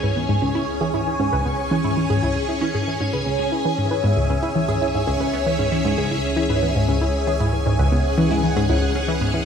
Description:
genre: ambient, sequencer-driven space music.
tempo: 116 BPM.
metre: 4/4.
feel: straight.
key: C# minor.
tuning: A4 = 440 Hz.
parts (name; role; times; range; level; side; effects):
phased string machine; sustained chords; 0.0-9.4 s; C#4 to G#5; -23 LUFS; equal; ensemble chorus, phaser.
wide unison pluck; arpeggios; 0.0-9.3 s; B3 to B4; -28 LUFS; right 1 dB; auto-pan, ping-pong delay.
analog pluck; riff; 0.0-9.4 s; C#2 to E3; -22 LUFS; equal; chorus, phaser, ping-pong delay.
round analog bass; bass; 0.0-9.4 s; C#2; -29 LUFS; equal; none.
bubbling stepped-filter texture; texture; 0.0-9.4 s; G#5; -36 LUFS; right 2 dB; chorus, built-in reverb.
room: wet lush hall reverb, RT60 2.7 s.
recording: none.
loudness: -18 LUFS.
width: side -7 dB against mid.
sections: 0.0-9.4 A section.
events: fade-in on analog synth bass 0.0-9.4; fade-in on synth texture 0.0-9.4; filter sweep on synth arpeggio sound 0.0-9.4.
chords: 0.0 C#m7.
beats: 0.16 0.68 | 1.20 1.71 2.23 2.75 | 3.26 3.78 4.30 4.82 | 5.33 5.85 6.37 6.88 | 7.40 7.92 8.44 8.95.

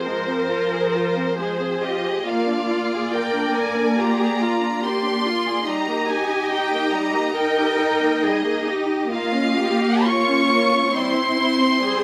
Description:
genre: classical, slow romantic movement for string orchestra.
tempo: 69 BPM.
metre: 4/4.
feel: rubato.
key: unclear.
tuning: A4 = 440 Hz.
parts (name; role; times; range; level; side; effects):
rich studio violin section; melody; 0.0-12.0 s; C5 to Db6; -26 LUFS; equal; none.
warm studio violin section; second line; 0.0-12.0 s; G3 to Eb5; -28 LUFS; equal; none.
rich studio viola section; accompaniment; 0.0-12.0 s; F3 to Eb4; -27 LUFS; equal; none.
rich studio cello section; bass; 0.0-12.0 s; E4 to Bb4; -26 LUFS; equal; none.
room: moderate scoring stage reverb, RT60 1.6 s.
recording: none.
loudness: -21 LUFS.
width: mono.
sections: 0.0-12.0 A section.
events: none.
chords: 0.0 Fm; 2.3 Bb7; 5.7 Eb/G; 9.1 Gm7b5/Bb; 10.9 C/G.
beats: 0.52 1.39 | 2.27 3.14 4.00 4.85 | 5.69 6.53 7.38 8.26 | 9.13 10.06 10.95 11.82.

